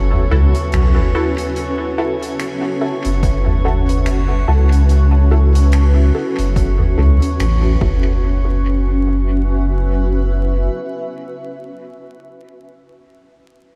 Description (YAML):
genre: ambient dub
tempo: 72 BPM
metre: 4/4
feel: swing 58% on 16ths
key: F# minor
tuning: A4 = 441 Hz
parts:
  - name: granular cloud pad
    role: sustained chords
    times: 0.0-12.0 s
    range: C#4 to E5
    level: -25 LUFS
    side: equal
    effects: built-in reverb
  - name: warm sub bass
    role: bass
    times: 0.0-10.7 s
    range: F#1 to C#2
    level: -16 LUFS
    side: equal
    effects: none
  - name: drifting glass-harmonics texture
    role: texture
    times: 0.0-8.3 s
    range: C#5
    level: -33 LUFS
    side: equal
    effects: chorus, built-in reverb
  - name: soft-mallet drum kit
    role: drums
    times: 0.1-7.6 s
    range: finger snaps, hi-hat, toms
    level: -26 LUFS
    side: equal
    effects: dub echo
  - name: filtered dub chord stab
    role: stabs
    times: 0.3-11.2 s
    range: E4 to A4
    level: -28 LUFS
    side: equal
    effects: phaser, subtle chorus, dub echo
  - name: electronic kick drum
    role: drums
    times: 3.2-8.0 s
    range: none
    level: -22 LUFS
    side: equal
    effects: overdrive
room: light reverb, studio ambience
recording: vinyl crackle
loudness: -16 LUFS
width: mono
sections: 0.0-8.2 A section; 8.2-11.6 B section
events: none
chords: 0.0 F#m7